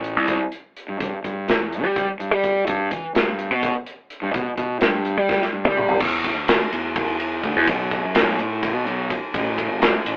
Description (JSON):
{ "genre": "math rock and midwest emo", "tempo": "252 BPM (eighths)", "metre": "7/8", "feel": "straight", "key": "G major", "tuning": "A4 = 441 Hz", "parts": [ { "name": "fuzz fingered electric bass", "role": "bass", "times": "0.0-10.2 s", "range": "G1 to G3", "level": "-24 LUFS", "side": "equal", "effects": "overdrive" }, { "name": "modern studio drum kit", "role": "drums", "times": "0.0-10.2 s", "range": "crash cymbal, hi-hat, kick drum, ride cymbal, snare drum, toms", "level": "-24 LUFS", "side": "equal", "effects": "none" } ], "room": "light reverb", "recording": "rough rehearsal-room recording, tube saturation, telephone sound", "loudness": "-22 LUFS", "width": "mono", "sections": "0.0-6.0 A section; 6.0-10.2 B section", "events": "drum fill 5.3-6.0", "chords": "none" }